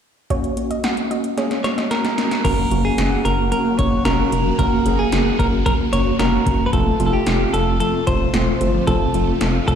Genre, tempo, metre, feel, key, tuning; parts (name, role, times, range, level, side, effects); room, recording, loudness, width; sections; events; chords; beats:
synth-pop; 112 BPM; 4/4; straight; F# major; A4 = 440 Hz
soft round pluck; second line; 0.3-1.9 s; C#5 to F#5; -28 LUFS; right 2 dB; chorus, tape echo
mellow tine electric piano; accompaniment; 0.3-9.8 s; A3 to G#4; -22 LUFS; equal; medium stereo tremolo
electro analog drum machine; drums; 0.3-9.8 s; crash cymbal, hi-hat, kick drum, snare drum; -23 LUFS; equal
direct-recorded clean electric guitar; melody; 1.6-9.8 s; G4 to C#5; -22 LUFS; right 1 dB; tape echo
phased string machine; sustained chords; 2.4-9.8 s; C3 to F#4; -26 LUFS; equal; ensemble chorus, phaser
soft round pluck; arpeggios; 2.4-9.8 s; F3 to F#5; -27 LUFS; right 3 dB; chorus, tape echo
rubbery square bass; bass; 2.4-9.8 s; E1 to G1; -22 LUFS; equal
light reverb, digital ambience; played on a big sound system in a bare room, large studio reverb; -16 LUFS; side -8 dB against mid
0.3-2.4 A section; 2.4-9.8 B section
drum fill 1.4-2.4
0.3 F#; 6.7 F
| 0.30 0.84 1.38 1.91 | 2.45 2.98 3.52 4.05 | 4.59 5.13 5.66 6.20 | 6.73 7.27 7.80 8.34 | 8.88 9.41